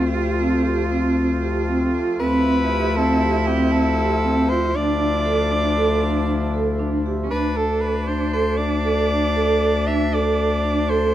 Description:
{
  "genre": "contemporary instrumental, chamber music in an uneven meter",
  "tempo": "117 BPM",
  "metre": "5/4",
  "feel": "straight",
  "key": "D dorian",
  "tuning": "A4 = 440 Hz",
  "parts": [
    { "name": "bright cello", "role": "second line", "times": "0.0-11.1 s", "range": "C#4 to F4", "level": "-27 LUFS", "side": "right 3 dB", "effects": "none" },
    { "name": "hand-pumped harmonium", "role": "sustained chords", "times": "0.0-7.3 s", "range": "D3 to G4", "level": "-30 LUFS", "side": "left 1 dB", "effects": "none" },
    { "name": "warm bass clarinet", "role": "bass", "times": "0.0-11.1 s", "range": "D2", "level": "-23 LUFS", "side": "left 2 dB", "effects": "none" },
    { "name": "vibraphone with medium mallets", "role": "arpeggios", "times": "0.1-11.1 s", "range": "C4 to A4", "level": "-22 LUFS", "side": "right 2 dB", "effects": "none" },
    { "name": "bright soprano saxophone", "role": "melody", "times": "2.2-11.1 s", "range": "G4 to E5", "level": "-24 LUFS", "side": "left 1 dB", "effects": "none" }
  ],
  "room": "wet studio reverb, RT60 0.7 s",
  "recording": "dark, warm production",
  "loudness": "-18 LUFS",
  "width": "side -12 dB against mid",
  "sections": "0.0-7.3 A section; 7.3-11.1 B section",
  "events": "none",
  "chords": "0.0 Fadd9/D; 4.7 Dmadd9; 7.3 D5",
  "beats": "0.13 0.64 1.16 1.67 | 2.18 2.70 3.21 3.72 4.23 | 4.75 5.26 5.77 6.28 6.80 | 7.31 7.82 8.33 8.85 9.36 | 9.87 10.38 10.89"
}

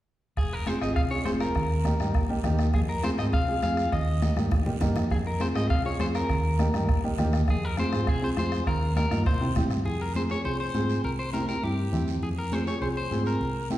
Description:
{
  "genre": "latin, cumbia",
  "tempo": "202 BPM",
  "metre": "4/4",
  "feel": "straight",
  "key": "F minor, F harmonic minor from 9.9 s",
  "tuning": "A4 = 440 Hz",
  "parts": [
    { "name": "electric guitar at the edge of break-up", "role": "melody", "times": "0.4-13.7 s", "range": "G4 to F5", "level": "-32 LUFS", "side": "left 2 dB", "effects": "spring reverb" },
    { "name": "hollow-body short-scale fingered electric bass", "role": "bass", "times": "0.4-13.8 s", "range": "F1 to C3", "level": "-29 LUFS", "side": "equal", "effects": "none" },
    { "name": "bombo", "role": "percussion", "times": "0.4-9.9 s", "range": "none", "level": "-29 LUFS", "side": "right 1 dB", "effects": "none" },
    { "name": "congas", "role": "percussion", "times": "0.4-13.8 s", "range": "none", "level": "-34 LUFS", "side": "left 1 dB", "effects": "none" },
    { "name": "guiro", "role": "percussion", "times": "0.4-13.8 s", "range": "none", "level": "-46 LUFS", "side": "right 6 dB", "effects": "none" },
    { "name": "dark upright piano", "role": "accompaniment", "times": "0.7-13.8 s", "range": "Bb3 to Ab4", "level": "-30 LUFS", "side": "right 1 dB", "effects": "none" }
  ],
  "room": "wet recital hall reverb, RT60 1.4 s",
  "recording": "recorded in a church or concert hall",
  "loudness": "-24 LUFS",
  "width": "side -14 dB against mid",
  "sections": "0.4-9.9 A section; 9.9-13.8 B section",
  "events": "drum fill 4.4-5.1",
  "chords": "0.4 Fm; 1.6 Eb; 2.7 Fm; 3.9 Eb; 5.1 Fm; 6.3 Eb; 7.5 Fm; 8.7 Eb; 9.3 C7; 9.9 Fm; 11.0 C; 12.2 Fm",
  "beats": "| 0.37 0.67 0.96 1.26 | 1.56 1.85 2.15 2.44 | 2.74 3.04 3.33 3.63 | 3.92 4.22 4.52 4.81 | 5.11 5.41 5.70 6.00 | 6.30 6.59 6.89 7.18 | 7.48 7.78 8.07 8.37 | 8.67 8.96 9.26 9.56 | 9.85 10.15 10.45 10.74 | 11.04 11.34 11.63 11.93 | 12.23 12.52 12.82 13.12 | 13.41 13.71"
}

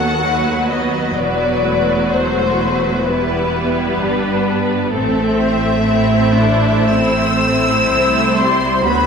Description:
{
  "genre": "classical, slow romantic movement for string orchestra",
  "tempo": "64 BPM",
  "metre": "4/4",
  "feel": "rubato",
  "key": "unclear",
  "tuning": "A4 = 440 Hz",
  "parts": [
    { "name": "warm symphonic violin section", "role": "melody", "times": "0.0-9.1 s", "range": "B4 to E6", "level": "-19 LUFS", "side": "left 4 dB", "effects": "none" },
    { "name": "rich symphonic violin section", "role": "second line", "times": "0.0-9.1 s", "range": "C4 to C5", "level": "-20 LUFS", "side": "left 2 dB", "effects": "none" },
    { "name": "rich symphonic viola section", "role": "accompaniment", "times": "0.0-9.1 s", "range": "F#3 to D4", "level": "-19 LUFS", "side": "right 1 dB", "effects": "none" },
    { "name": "rich symphonic cello section", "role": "bass", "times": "0.0-9.1 s", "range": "C2 to A2", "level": "-21 LUFS", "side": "right 3 dB", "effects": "none" },
    { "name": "rich symphonic double bass section", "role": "bass", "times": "0.0-9.1 s", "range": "E1 to D#2", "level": "-23 LUFS", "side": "right 2 dB", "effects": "none" }
  ],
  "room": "wet recital hall reverb, RT60 1.4 s",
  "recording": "recorded in a church or concert hall",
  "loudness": "-13 LUFS",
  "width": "side -6 dB against mid",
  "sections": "0.0-9.1 A section",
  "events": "none",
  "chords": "0.0 B/D#; 1.2 Em; 4.9 Am",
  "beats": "0.24 | 1.17 2.13 3.07 4.00 | 4.93 5.87 6.92 7.91 | 8.84"
}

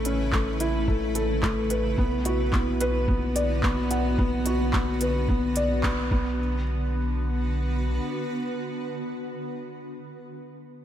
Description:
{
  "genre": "piano and strings electronica",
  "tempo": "109 BPM",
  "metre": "4/4",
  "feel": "straight",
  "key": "B minor",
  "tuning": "A4 = 440 Hz",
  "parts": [
    { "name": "granular cloud pad", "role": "sustained chords", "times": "0.0-9.3 s", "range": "C#3 to B4", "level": "-31 LUFS", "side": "equal", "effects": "built-in reverb, sidechain pumping" },
    { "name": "felt-muted upright piano", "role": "riff", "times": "0.0-10.8 s", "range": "A3 to F#5", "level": "-28 LUFS", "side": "equal", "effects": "digital delay" },
    { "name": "round analog bass", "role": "bass", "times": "0.0-8.0 s", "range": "A1 to B1", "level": "-28 LUFS", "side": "equal", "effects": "sidechain pumping" },
    { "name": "organic electronic drum kit", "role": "drums", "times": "0.1-5.9 s", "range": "handclaps, hi-hat", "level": "-32 LUFS", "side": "equal", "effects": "none" },
    { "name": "electronic kick drum", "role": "drums", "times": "0.3-6.2 s", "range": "none", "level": "-26 LUFS", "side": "equal", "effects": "none" }
  ],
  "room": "light reverb, digital ambience",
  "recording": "none",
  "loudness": "-23 LUFS",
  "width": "side -10 dB against mid",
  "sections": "0.0-6.4 A section; 6.4-8.6 B section",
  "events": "drop 0.0-6.4; band accent 5.8",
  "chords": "0.0 Aadd9; 2.0 Bm",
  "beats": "0.33 0.88 1.43 | 1.98 2.53 3.08 3.63 | 4.18 4.73 5.28 5.83 | 6.38 6.93 7.48 8.03"
}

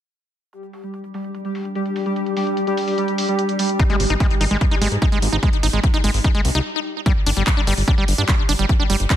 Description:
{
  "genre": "psychedelic trance",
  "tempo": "147 BPM",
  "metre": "4/4",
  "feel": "straight",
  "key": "unclear",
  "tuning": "A4 = 438 Hz",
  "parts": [
    { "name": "pulsing gated texture", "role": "sustained chords", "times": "0.5-9.2 s", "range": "G3 to G4", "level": "-25 LUFS", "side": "equal", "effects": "chorus, built-in reverb, sidechain pumping" },
    { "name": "big-room dance drum kit", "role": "drums", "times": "0.5-9.2 s", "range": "handclaps, hi-hat", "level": "-26 LUFS", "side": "right 1 dB", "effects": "overdrive, low-pass filter on hats, low-pass filter on snare" },
    { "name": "ethereal airy pad", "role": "texture", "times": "1.6-6.7 s", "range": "D4 to G5", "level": "-31 LUFS", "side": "right 1 dB", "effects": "ensemble chorus, built-in reverb, sidechain pumping" },
    { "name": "overdriven acid bass", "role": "riff", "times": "3.8-9.1 s", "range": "G3 to Eb4", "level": "-22 LUFS", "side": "moving between left 6 dB and right 5 dB", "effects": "distortion, auto-pan, sidechain pumping, ping-pong delay" },
    { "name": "electronic kick drum", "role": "drums", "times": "3.8-9.2 s", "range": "none", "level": "-18 LUFS", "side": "equal", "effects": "overdrive" },
    { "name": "fat analog bass", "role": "bass", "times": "4.0-9.1 s", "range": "G1 to Ab2", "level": "-20 LUFS", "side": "equal", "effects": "none" }
  ],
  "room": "light reverb, digital ambience",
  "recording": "dense, heavily limited modern master",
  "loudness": "-17 LUFS",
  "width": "side -11 dB against mid",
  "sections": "0.5-7.1 A section; 7.1-9.2 B section",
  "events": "fade-in on ambient pad 0.5-7.1; stop 6.7-7.1",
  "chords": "0.5 G5; 3.8 Ab5; 7.1 G5",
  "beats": "| 0.53 0.94 1.35 1.75 | 2.16 2.57 2.98 3.39 | 3.79 4.20 4.61 5.02 | 5.43 5.84 6.24 6.65 | 7.06 7.47 7.88 8.29 | 8.69 9.10"
}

